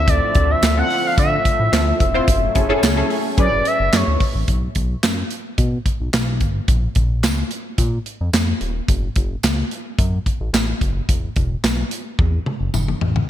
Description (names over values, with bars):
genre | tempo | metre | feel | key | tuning
early-eighties boogie funk | 109 BPM | 4/4 | straight | unclear | A4 = 439 Hz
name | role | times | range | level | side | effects
expressive synth lead | melody | 0.0-4.2 s | C#5 to F#5 | -20 LUFS | equal | chorus, ping-pong delay
funky polysynth comp | accompaniment | 0.0-4.2 s | C4 to C5 | -23 LUFS | equal | chorus
lush unison pad | sustained chords | 0.0-4.5 s | D3 to G#5 | -28 LUFS | equal | chorus
chorused synth bass | bass | 0.0-13.2 s | D#1 to D3 | -21 LUFS | equal | none
modern studio drum kit | drums | 0.1-13.3 s | handclaps, hi-hat, kick drum, snare drum, toms | -20 LUFS | equal | none
tambourine | percussion | 0.6-12.9 s | none | -34 LUFS | right 7 dB | none
room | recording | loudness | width
moderate lush hall reverb, RT60 1.9 s | bright 1980s-style digital production | -16 LUFS | side -11 dB against mid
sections
0.0-4.5 A section; 4.5-13.3 B section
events
analog synth lead solo 0.0-4.5; drum fill 12.2-13.3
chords
0.0 Dm9; 2.3 F#m9; 4.5 B5; 6.7 A#5; 8.9 F#m; 11.1 Esus2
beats
| 0.08 0.63 1.18 1.73 | 2.28 2.83 3.38 3.93 | 4.48 5.03 5.58 6.13 | 6.68 7.23 7.78 8.33 | 8.88 9.44 9.98 10.54 | 11.09 11.64 12.19 12.74